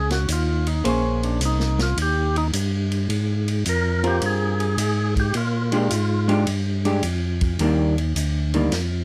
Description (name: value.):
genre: soul jazz organ trio.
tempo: 107 BPM.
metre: 4/4.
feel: swing 68% on 8ths.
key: Eb major.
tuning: A4 = 443 Hz.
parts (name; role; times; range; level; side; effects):
percussive tonewheel organ; melody; 0.0-6.4 s; Db4 to Bb4; -28 LUFS; equal; slow rotary speaker.
tonewheel organ; bass; 0.0-9.0 s; Bb1 to Bb2; -24 LUFS; equal; chorus vibrato, slow rotary speaker.
vintage drum kit; drums; 0.1-8.9 s; hi-hat, kick drum, ride cymbal, snare drum; -32 LUFS; equal; none.
vintage hollow-body jazz guitar; accompaniment; 0.8-8.7 s; Eb3 to C5; -25 LUFS; equal; none.
room: little or no reverb.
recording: close, detailed microphones.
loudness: -22 LUFS.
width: mono.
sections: 0.0-7.6 A section; 7.6-9.0 A section.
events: tonewheel organ solo 0.0-7.6.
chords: 0.0 Gbsus2; 0.8 Bbm9; 2.0 Eb; 3.1 Ab69; 5.3 Bb6; 7.6 Ebmaj7.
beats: 0.28 | 0.85 1.41 1.97 2.53 | 3.10 3.66 4.22 4.78 | 5.35 5.91 6.47 7.04 | 7.60 8.16 8.72.